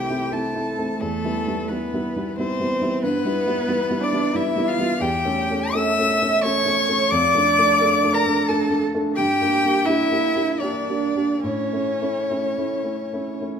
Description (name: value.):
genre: classical, slow romantic movement for piano trio.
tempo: 69-92 BPM.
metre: 3/4.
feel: rubato.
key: unclear.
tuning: A4 = 438 Hz.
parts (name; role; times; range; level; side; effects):
warm violin; melody; 0.0-13.5 s; A4 to E6; -23 LUFS; left 6 dB; none.
rich cello; second line; 0.0-13.5 s; A3 to E5; -25 LUFS; right 6 dB; none.
dark grand piano; accompaniment; 0.0-13.6 s; C2 to A4; -24 LUFS; equal; none.
room: wet recital hall reverb, RT60 1.7 s.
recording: none.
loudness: -19 LUFS.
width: side -7 dB against mid.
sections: 0.0-13.6 A section.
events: none.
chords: 0.0 Am/C; 1.0 Em; 3.0 Em/G; 5.0 A7/E; 7.1 Dm/F; 9.2 Gm; 11.4 A.